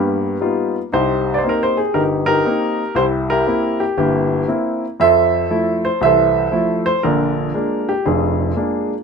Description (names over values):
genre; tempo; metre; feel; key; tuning
solo jazz; 118 BPM; 4/4; swing 67% on 8ths; unclear; A4 = 440 Hz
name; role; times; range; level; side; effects
warm baby grand piano; solo; 0.0-9.0 s; F1 to E5; -15 LUFS; equal; none
room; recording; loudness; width
light reverb; minimal, uncompressed stereo recording; -15 LUFS; side -5 dB against mid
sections
0.9-9.0 A section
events
none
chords
0.0 G7alt; 0.9 Cm7; 3.0 C7; 5.0 Fmaj7; 7.0 Bb7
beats
0.41 | 0.92 1.43 1.94 2.45 | 2.96 3.47 3.98 4.49 | 5.00 5.50 6.01 6.53 | 7.04 7.55 8.06 8.57